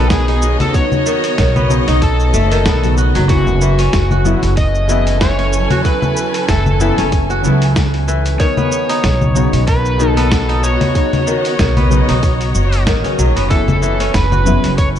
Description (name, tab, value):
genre	organic downtempo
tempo	94 BPM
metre	4/4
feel	swing 56% on 16ths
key	unclear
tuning	A4 = 438 Hz
part	overdriven slide guitar	melody	0.0-14.9 s	F#4 to D#5	-20 LUFS	right 1 dB	ping-pong delay
part	deep mellow chord stab	accompaniment	0.0-15.0 s	C#3 to F#4	-21 LUFS	left 2 dB	chorus, sidechain pumping
part	warm studio string section	sustained chords	0.0-15.0 s	F#3 to G#5	-23 LUFS	equal	sidechain pumping
part	kora	arpeggios	0.0-15.0 s	D#3 to F#4	-20 LUFS	left 2 dB	ping-pong delay
part	upright bass	bass	0.0-15.0 s	F#1 to C#2	-15 LUFS	right 1 dB	none
part	dusty soul sampler-style drum kit	drums	0.1-15.0 s	cabasa, congas, hi-hat, snare drum	-20 LUFS	left 1 dB	none
part	electronic kick drum	drums	0.1-14.9 s	none	-16 LUFS	equal	none
part	congas	percussion	13.7-14.6 s	none	-22 LUFS	left 2 dB	none
room	light reverb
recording	dark, warm production, nothing above 10.3 kHz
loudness	-12 LUFS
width	side -10 dB against mid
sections	0.0-15.0 A section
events	none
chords	0.0 B9; 3.3 F#m7; 8.4 B9; 13.5 F#m7